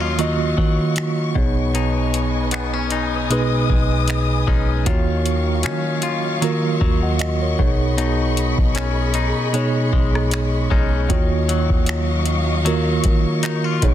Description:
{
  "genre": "contemporary R&B",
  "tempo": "77 BPM",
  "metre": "4/4",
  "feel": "swing 54% on 16ths",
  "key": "Eb minor",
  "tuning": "A4 = 440 Hz",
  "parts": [
    { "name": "mellow tine electric piano", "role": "accompaniment", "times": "0.0-13.9 s", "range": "B2 to Gb5", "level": "-21 LUFS", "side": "right 3 dB", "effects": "medium stereo tremolo" },
    { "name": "warm studio string section", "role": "sustained chords", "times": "0.0-13.9 s", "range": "Gb3 to D#6", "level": "-27 LUFS", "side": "left 3 dB", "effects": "none" },
    { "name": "direct-recorded clean electric guitar", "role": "arpeggios", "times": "0.0-13.9 s", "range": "B2 to F4", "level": "-26 LUFS", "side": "left 9 dB", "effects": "ping-pong delay" },
    { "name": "soft 808-style bass", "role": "bass", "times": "0.0-13.9 s", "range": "B1 to Eb3", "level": "-23 LUFS", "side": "equal", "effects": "none" },
    { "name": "booming analog drum machine", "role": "drums", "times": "0.2-13.9 s", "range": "finger snaps, hi-hat, kick drum, rim click", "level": "-21 LUFS", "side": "equal", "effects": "soft clipping on snare" }
  ],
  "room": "digital ambience",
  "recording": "dense, heavily limited modern master",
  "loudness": "-17 LUFS",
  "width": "side -11 dB against mid",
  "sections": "0.0-11.1 A section; 11.1-13.9 B section",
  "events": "none",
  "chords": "0.0 Ebm9; 1.4 B69; 4.9 Ebm9; 7.6 B69; 11.1 Ebm9"
}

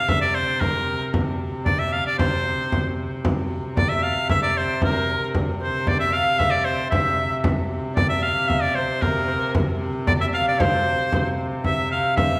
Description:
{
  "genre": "medieval dance",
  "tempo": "114 BPM",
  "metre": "2/4",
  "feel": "straight",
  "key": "C mixolydian",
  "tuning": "A4 = 440 Hz",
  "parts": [
    { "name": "bright shawm", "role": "melody", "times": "0.0-12.4 s", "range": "Bb4 to F5", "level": "-25 LUFS", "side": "equal", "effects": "none" },
    { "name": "rich hurdy-gurdy", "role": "drone", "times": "0.0-12.4 s", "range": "C3", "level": "-32 LUFS", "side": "equal", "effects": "none" },
    { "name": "frame drum", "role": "percussion", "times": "0.1-12.4 s", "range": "none", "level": "-26 LUFS", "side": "equal", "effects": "none" },
    { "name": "concert harp", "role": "second line", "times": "3.8-12.4 s", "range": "Bb4 to F5", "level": "-30 LUFS", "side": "equal", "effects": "none" }
  ],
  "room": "wet recital hall reverb, RT60 1.4 s",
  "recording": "recorded in a church or concert hall",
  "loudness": "-22 LUFS",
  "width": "mono",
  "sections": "0.0-3.2 A section; 3.2-11.6 A section",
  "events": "none",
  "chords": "none"
}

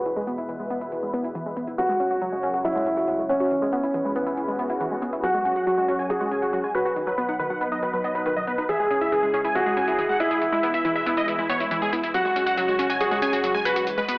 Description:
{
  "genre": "uplifting trance",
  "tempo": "139 BPM",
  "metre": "4/4",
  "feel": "straight",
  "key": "unclear",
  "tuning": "A4 = 440 Hz",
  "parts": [
    { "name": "warm concert grand piano", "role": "second line", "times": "0.0-14.2 s", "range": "C#4 to B4", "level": "-25 LUFS", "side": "equal", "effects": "dub echo" },
    { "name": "analog string pad", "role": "sustained chords", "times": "0.0-14.2 s", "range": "C#2 to F#5", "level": "-32 LUFS", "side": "equal", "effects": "ensemble chorus, phaser" },
    { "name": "wide unison pluck", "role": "arpeggios", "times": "0.1-14.1 s", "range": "D#3 to F#5", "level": "-29 LUFS", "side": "equal", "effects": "dub echo" },
    { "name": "electronic hi-hat", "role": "drums", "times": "0.1-14.2 s", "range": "none", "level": "-39 LUFS", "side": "equal", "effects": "none" },
    { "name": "swell", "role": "sound effects", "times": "4.5-5.2 s", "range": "none", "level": "-33 LUFS", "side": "equal", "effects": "none" },
    { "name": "supersaw stab", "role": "melody", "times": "5.2-14.2 s", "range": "E4 to G#5", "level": "-24 LUFS", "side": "equal", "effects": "dub echo" }
  ],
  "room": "wet recital hall reverb, RT60 1.6 s, digital ambience",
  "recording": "low-pass filter, AM radio sound",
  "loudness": "-21 LUFS",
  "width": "side -24 dB against mid",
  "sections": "0.0-14.2 A section",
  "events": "filter sweep on synth pluck 0.0-14.2; filter sweep 0.0-14.2; swell 4.5-5.2",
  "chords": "0.1 E; 1.8 F#sus2; 3.5 E; 5.2 F#sus2; 7.0 B; 8.7 C#m; 10.4 E; 12.1 F#sus2"
}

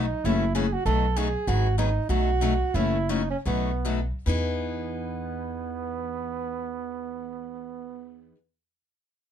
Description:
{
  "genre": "acoustic string swing (jazz manouche)",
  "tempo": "137-196 BPM",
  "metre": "4/4",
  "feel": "swing 58% on 8ths",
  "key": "E major",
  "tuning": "A4 = 439 Hz",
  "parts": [
    { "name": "breathy soprano saxophone", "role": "second line", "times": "0.0-8.3 s", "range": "B3 to A4", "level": "-30 LUFS", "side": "right 6 dB", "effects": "none" },
    { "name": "picked steel-string acoustic guitar", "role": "accompaniment", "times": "0.0-8.4 s", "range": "B2 to G#4", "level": "-30 LUFS", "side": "left 7 dB", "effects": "none" },
    { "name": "upright bass", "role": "bass", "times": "0.0-8.3 s", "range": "F#1 to E2", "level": "-27 LUFS", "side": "equal", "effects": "none" }
  ],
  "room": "light reverb",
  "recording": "dark, warm production",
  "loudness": "-24 LUFS",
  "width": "side -9 dB against mid",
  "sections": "0.0-4.3 A section; 4.3-7.8 B section",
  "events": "slowing down 1.5-4.3",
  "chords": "0.2 F#m7; 0.9 B7; 1.5 G#m7; 2.1 B7; 2.7 F#m7; 3.5 B7; 4.3 Emaj7"
}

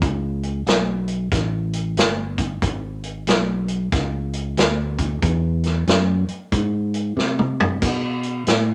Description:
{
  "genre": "electric blues shuffle",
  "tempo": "92 BPM",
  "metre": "4/4",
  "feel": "swing 63% on 8ths",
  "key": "E mixolydian",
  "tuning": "A4 = 441 Hz",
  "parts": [
    { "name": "fingered electric bass", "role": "bass", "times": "0.0-8.7 s", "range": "G1 to C3", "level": "-25 LUFS", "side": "equal", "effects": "none" },
    { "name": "vintage drum kit", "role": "drums", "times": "0.0-8.7 s", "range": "crash cymbal, hi-hat, kick drum, snare drum, toms", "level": "-23 LUFS", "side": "equal", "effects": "none" }
  ],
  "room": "light reverb",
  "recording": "none",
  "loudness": "-22 LUFS",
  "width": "mono",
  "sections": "0.0-8.7 A section",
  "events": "drum fill 7.2-7.8",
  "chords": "none"
}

